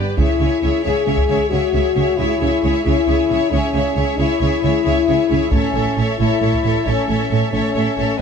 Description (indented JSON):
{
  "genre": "cinematic, epic orchestral film score",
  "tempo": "90 BPM (dotted quarters)",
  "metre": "12/8",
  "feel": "straight",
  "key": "unclear",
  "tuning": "A4 = 443 Hz",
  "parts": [
    { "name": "rich symphonic violin section", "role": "melody", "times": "0.0-8.2 s", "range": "D5 to E5", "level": "-28 LUFS", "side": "equal", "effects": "none" },
    { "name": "rich studio violin section", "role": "second line", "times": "0.0-8.2 s", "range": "B4 to C#5", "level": "-26 LUFS", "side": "left 1 dB", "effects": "none" },
    { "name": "rich symphonic viola section", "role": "accompaniment", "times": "0.0-8.2 s", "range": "G4 to A4", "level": "-26 LUFS", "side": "right 3 dB", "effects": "none" },
    { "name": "rich symphonic cello section", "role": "bass", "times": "0.0-8.2 s", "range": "A2 to C#3", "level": "-23 LUFS", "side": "right 4 dB", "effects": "none" },
    { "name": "rich symphonic double bass section", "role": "bass", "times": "0.0-8.2 s", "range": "A1 to C#2", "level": "-22 LUFS", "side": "right 4 dB", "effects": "none" },
    { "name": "mellow French horn section", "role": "sustained chords", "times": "0.2-8.2 s", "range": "B3 to G#4", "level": "-19 LUFS", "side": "left 7 dB", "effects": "none" },
    { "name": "taiko ensemble", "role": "drums", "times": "0.2-1.4, 5.5-6.7 s", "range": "none", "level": "-21 LUFS", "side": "right 1 dB", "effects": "none" }
  ],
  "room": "moderate recital hall reverb, RT60 1.5 s",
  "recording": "dark, warm production",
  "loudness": "-15 LUFS",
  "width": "side -6 dB against mid",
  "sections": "0.0-8.2 A section",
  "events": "none",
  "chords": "0.2 C#m; 5.5 A",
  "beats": "| 0.18 0.85 1.51 2.18 | 2.85 3.52 4.18 4.85 | 5.52 6.19 6.86 7.53 | 8.20"
}